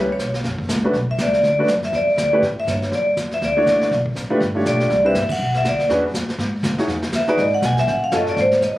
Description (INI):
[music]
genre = jazz, small-group swing and bop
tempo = 242 BPM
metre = 4/4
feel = swing 58% on 8ths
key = unclear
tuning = A4 = 440 Hz
[part]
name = vibraphone with medium hard mallets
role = melody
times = 0.0-8.8 s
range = C5 to G#5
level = -18 LUFS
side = equal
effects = plate reverb
[part]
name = warm concert grand piano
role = accompaniment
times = 0.0-8.4 s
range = A3 to C#5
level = -21 LUFS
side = equal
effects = none
[part]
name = upright bass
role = bass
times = 0.0-8.8 s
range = F#1 to A2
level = -25 LUFS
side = equal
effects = none
[part]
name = vintage brush drum kit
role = drums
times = 0.2-8.8 s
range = brushed snare drum, crash cymbal, hi-hat, kick drum, snare drum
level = -26 LUFS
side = equal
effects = none
[sound]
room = moderate studio reverb, RT60 0.8 s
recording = recorded on a phone in the room, club ambience, compression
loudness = -17 LUFS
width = side -16 dB against mid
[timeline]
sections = 0.0-6.9 A section; 6.9-8.8 B section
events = band accent 5.3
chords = 0.4 F#5; 0.9 Bmadd9; 1.9 Em7; 2.4 A7; 2.9 Dmaj7; 3.9 G7; 4.9 Cmaj9; 5.9 E13; 6.9 Emaj7; 7.9 F#mmaj7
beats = 0.20 0.44 0.69 | 0.94 1.19 1.44 1.68 | 1.93 2.18 2.43 2.67 | 2.92 3.17 3.42 3.67 | 3.91 4.16 4.41 4.66 | 4.91 5.15 5.40 5.65 | 5.90 6.14 6.39 6.64 | 6.89 7.13 7.38 7.63 | 7.88 8.13 8.38 8.62